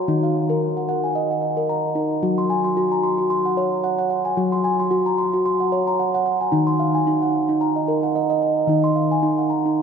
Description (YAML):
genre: world meditative, meditative tuned percussion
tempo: 112 BPM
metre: 4/4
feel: swing 56% on 16ths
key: unclear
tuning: A4 = 440 Hz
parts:
  - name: steel tongue drum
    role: solo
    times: 0.0-9.8 s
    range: Eb3 to C6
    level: -18 LUFS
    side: equal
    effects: diffuse ambient delay
room: wet cathedral reverb, RT60 6.0 s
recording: dreamy mix soaked in reverb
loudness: -18 LUFS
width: side -6 dB against mid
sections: 0.0-2.2 A section; 2.2-9.8 B section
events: none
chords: 0.1 Ebm; 2.2 Gb; 6.5 Ebm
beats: | 0.08 0.62 1.15 1.69 | 2.23 2.77 3.30 3.84 | 4.38 4.92 5.45 5.99 | 6.53 7.07 7.61 8.14 | 8.68 9.22 9.76